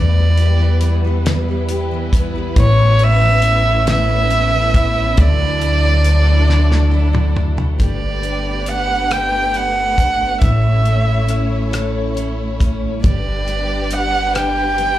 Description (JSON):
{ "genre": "six-eight pop ballad", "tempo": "46 BPM (dotted quarters)", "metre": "6/8", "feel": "straight", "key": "unclear", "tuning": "A4 = 441 Hz", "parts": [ { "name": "warm violin", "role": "melody", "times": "0.0-15.0 s", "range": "C#5 to G5", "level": "-18 LUFS", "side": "right 2 dB", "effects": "plate reverb, slapback echo" }, { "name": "picked steel-string acoustic guitar", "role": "accompaniment", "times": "0.0-15.0 s", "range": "E2 to A4", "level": "-24 LUFS", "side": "left 1 dB", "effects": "double-tracked left and right, plate reverb, slapback echo" }, { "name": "warm studio string section", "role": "sustained chords", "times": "0.0-15.0 s", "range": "F#3 to C#5", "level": "-26 LUFS", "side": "left 1 dB", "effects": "plate reverb" }, { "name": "upright bass", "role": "bass", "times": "0.0-15.0 s", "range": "G1 to E2", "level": "-16 LUFS", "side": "equal", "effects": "none" }, { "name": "damped 70s drum kit", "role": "drums", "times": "0.4-15.0 s", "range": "hi-hat, kick drum, rim click, snare drum, toms", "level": "-17 LUFS", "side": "equal", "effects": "none" } ], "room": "light reverb", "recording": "live gig heard through the venue's PA, club reverb", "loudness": "-13 LUFS", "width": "side -14 dB against mid", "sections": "0.0-7.8 A section; 7.8-15.0 B section", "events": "drum fill 6.5-7.8", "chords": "0.0 Em; 2.6 Aadd9; 5.2 Dadd9; 7.8 Gadd9; 10.4 A; 13.0 G" }